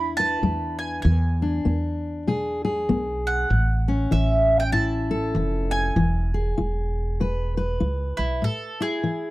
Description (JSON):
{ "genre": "acoustic folk duo or small band", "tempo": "98 BPM", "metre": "4/4", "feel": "swing 60% on 8ths", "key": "A major", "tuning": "A4 = 440 Hz", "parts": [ { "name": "mandolin", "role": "melody", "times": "0.0-9.3 s", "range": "E4 to B5", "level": "-25 LUFS", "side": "right 2 dB", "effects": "none" }, { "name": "fingerpicked steel-string acoustic guitar", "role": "accompaniment", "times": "0.0-9.3 s", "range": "A2 to B4", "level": "-25 LUFS", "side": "left 2 dB", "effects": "none" }, { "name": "upright bass", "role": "bass", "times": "0.0-8.4 s", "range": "E1 to E2", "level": "-24 LUFS", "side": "equal", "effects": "none" } ], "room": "little or no reverb", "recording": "dry, close 1970s-style studio recording", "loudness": "-21 LUFS", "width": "side -18 dB against mid", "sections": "0.0-8.4 A section", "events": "none", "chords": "0.0 E7; 3.5 A; 6.0 E; 8.4 A5" }